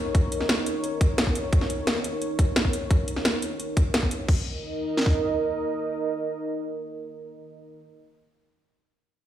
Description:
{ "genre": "dark technical drum and bass", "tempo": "174 BPM", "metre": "4/4", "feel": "straight", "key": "unclear", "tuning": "A4 = 439 Hz", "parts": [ { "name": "dark analog pad", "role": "sustained chords", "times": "0.0-7.8 s", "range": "Eb4 to Eb5", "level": "-29 LUFS", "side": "right 1 dB", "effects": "chorus, sidechain pumping" }, { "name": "drum and bass drum kit", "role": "drums", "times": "0.1-5.1 s", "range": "kick drum, snare drum", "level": "-21 LUFS", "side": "equal", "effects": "overdrive" }, { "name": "drum and bass drum kit", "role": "drums", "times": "0.1-4.4 s", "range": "crash cymbal, hi-hat, snare drum", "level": "-27 LUFS", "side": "equal", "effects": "none" } ], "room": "moderate digital room reverb, RT60 0.9 s", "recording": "played on a big sound system in a bare room, stone room reverb", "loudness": "-23 LUFS", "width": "side -11 dB against mid", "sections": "0.0-4.3 A section; 4.3-7.0 B section", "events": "none", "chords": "0.0 Eb5" }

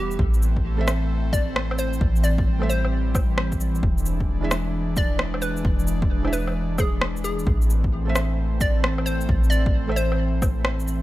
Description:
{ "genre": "future garage", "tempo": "132 BPM", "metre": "4/4", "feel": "swing 64% on 16ths", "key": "A minor", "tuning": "A4 = 440 Hz", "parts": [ { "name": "hollow square pluck", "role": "melody", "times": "0.0-10.4 s", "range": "G4 to D5", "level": "-30 LUFS", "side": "left 1 dB", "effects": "chorus, tape echo" }, { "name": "airy breathy pad", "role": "sustained chords", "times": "0.0-11.0 s", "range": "E3 to D4", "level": "-29 LUFS", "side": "equal", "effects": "chorus, vintage 12-bit sampler grit, sidechain pumping" }, { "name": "soft 808-style bass", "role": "bass", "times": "0.0-11.0 s", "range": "E1 to A1", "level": "-24 LUFS", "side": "equal", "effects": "sidechain pumping" }, { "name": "electronic shaker, rim click and woodblock", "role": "drums", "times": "0.1-11.0 s", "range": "none", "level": "-27 LUFS", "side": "equal", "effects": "overdrive" }, { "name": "electronic kick drum", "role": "drums", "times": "0.2-10.5 s", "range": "none", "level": "-24 LUFS", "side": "equal", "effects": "overdrive" }, { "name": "felt-muted upright piano", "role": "accompaniment", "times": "0.8-10.0 s", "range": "E3 to E5", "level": "-33 LUFS", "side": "right 4 dB", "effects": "sidechain pumping, tape echo" } ], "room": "little or no reverb", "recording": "none", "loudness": "-20 LUFS", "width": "side -16 dB against mid", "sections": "0.0-11.0 A section", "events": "none", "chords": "0.2 Am; 3.8 E7; 7.5 Am" }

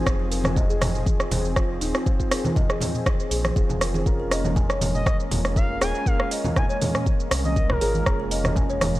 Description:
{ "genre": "afro house", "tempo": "120 BPM", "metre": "4/4", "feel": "swing 53% on 16ths", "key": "unclear", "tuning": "A4 = 441 Hz", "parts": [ { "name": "warm analog pad", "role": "sustained chords", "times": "0.0-9.0 s", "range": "F3 to Ab5", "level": "-32 LUFS", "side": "equal", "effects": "chorus, sidechain pumping" }, { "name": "kalimba", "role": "arpeggios", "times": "0.0-8.8 s", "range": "Eb4 to Ab5", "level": "-31 LUFS", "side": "left 1 dB", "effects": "sidechain pumping, analog delay" }, { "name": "felt-muted upright piano", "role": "stabs", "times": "0.0-9.0 s", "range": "C4 to C5", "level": "-34 LUFS", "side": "right 1 dB", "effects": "sidechain pumping, analog delay" }, { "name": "smooth gliding synth bass", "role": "bass", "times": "0.0-9.0 s", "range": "Eb1 to C2", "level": "-28 LUFS", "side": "equal", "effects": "sidechain pumping" }, { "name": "afro-pop drum kit", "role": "drums", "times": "0.1-9.0 s", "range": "hi-hat, rim click, shaker, toms", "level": "-27 LUFS", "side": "right 1 dB", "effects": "none" }, { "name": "electronic kick drum", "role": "drums", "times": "0.1-8.7 s", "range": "none", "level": "-23 LUFS", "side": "equal", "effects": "none" }, { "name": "congas", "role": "percussion", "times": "0.4-8.9 s", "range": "none", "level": "-28 LUFS", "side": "right 1 dB", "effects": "none" }, { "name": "expressive portamento lead", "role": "melody", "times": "4.9-8.2 s", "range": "Bb4 to Ab5", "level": "-31 LUFS", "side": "left 1 dB", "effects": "chorus, analog delay" } ], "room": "digital ambience", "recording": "dry, gritty hardware recording, transformer saturation", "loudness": "-20 LUFS", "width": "side -17 dB against mid", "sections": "0.0-9.0 A section", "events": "none", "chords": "0.0 Fm; 4.1 Bbm7" }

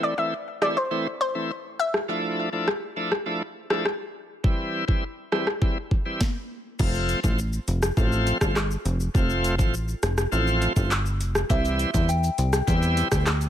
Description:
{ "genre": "dancehall", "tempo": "102 BPM", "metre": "4/4", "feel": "straight", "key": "unclear", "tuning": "A4 = 441 Hz", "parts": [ { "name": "analog pluck", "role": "melody", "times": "0.0-1.9 s", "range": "C5 to E5", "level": "-26 LUFS", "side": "left 2 dB", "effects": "chorus, ping-pong delay" }, { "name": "bright tonewheel organ", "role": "accompaniment", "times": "0.0-13.3 s", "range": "E3 to F4", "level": "-28 LUFS", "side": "equal", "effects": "overdrive, slow rotary speaker, sidechain pumping" }, { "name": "island pop drum kit", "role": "drums", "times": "0.6-13.5 s", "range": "crash cymbal, handclaps, hi-hat, kick drum, rim click, shaker, snare drum", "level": "-25 LUFS", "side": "equal", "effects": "overdrive" }, { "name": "plucky analog bass", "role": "bass", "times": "6.8-13.5 s", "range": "F1 to E2", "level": "-24 LUFS", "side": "equal", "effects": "none" }, { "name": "soft synth bell", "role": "second line", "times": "11.5-13.5 s", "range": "E5 to G5", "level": "-30 LUFS", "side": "left 2 dB", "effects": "chorus, phaser, ping-pong delay" }, { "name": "maracas", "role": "percussion", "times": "11.5-13.5 s", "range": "none", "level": "-41 LUFS", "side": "right 9 dB", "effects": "none" } ], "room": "light reverb", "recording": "none", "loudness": "-22 LUFS", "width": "side -11 dB against mid", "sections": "0.0-6.8 A section; 6.8-13.5 B section", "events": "stop 6.2-6.8", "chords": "0.0 Am; 2.1 Dmadd9; 4.4 C; 6.8 F; 11.5 C" }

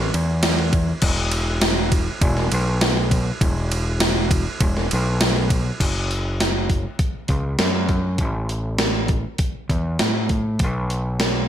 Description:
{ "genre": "rock, shoegaze and dream pop", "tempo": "100 BPM", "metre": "4/4", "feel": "straight", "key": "unclear", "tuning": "A4 = 439 Hz", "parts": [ { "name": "growling fingered electric bass", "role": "bass", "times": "0.0-11.5 s", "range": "E1 to A2", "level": "-22 LUFS", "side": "equal", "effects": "overdrive" }, { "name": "gated 80s digital drum machine", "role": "drums", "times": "0.1-11.3 s", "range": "crash cymbal, hi-hat, kick drum, ride cymbal, snare drum", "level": "-20 LUFS", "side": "equal", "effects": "gated reverb, gated reverb snare, overdrive" } ], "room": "little or no reverb", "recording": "none", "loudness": "-18 LUFS", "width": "side -10 dB against mid", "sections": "0.0-5.8 A section; 5.8-11.5 B section", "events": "none", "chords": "none" }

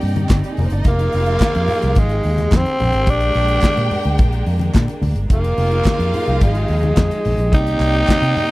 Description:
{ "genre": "disco", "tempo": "108 BPM", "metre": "4/4", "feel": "straight", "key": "F dorian", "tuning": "A4 = 440 Hz", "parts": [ { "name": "warm studio violin section", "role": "second line", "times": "0.0-8.5 s", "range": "G3 to G5", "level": "-27 LUFS", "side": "right 1 dB", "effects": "none" }, { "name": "clear studio string section", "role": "sustained chords", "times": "0.0-8.5 s", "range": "C3 to D5", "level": "-27 LUFS", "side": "right 1 dB", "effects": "none" }, { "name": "vintage muted fingered electric bass", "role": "bass", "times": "0.0-8.3 s", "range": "F1 to C3", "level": "-18 LUFS", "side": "equal", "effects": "none" }, { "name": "modern studio drum kit", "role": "drums", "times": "0.0-8.5 s", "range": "handclaps, hi-hat, kick drum, snare drum", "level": "-16 LUFS", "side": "equal", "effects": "none" }, { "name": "congas", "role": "percussion", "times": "0.2-8.5 s", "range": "none", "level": "-26 LUFS", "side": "left 3 dB", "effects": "none" }, { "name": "group handclap", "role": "percussion", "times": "0.3-8.2 s", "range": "none", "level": "-36 LUFS", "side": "right 9 dB", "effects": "none" }, { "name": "growling tenor saxophone", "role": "melody", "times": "0.9-8.5 s", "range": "Ab3 to Eb4", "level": "-19 LUFS", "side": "equal", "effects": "none" } ], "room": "small room ambience", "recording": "dry, close 1970s-style studio recording", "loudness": "-14 LUFS", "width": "side -19 dB against mid", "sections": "0.0-8.5 A section", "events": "none", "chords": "0.0 Cm9; 0.8 Fm9; 2.8 Bb7; 5.3 Fm9; 7.5 Cm9" }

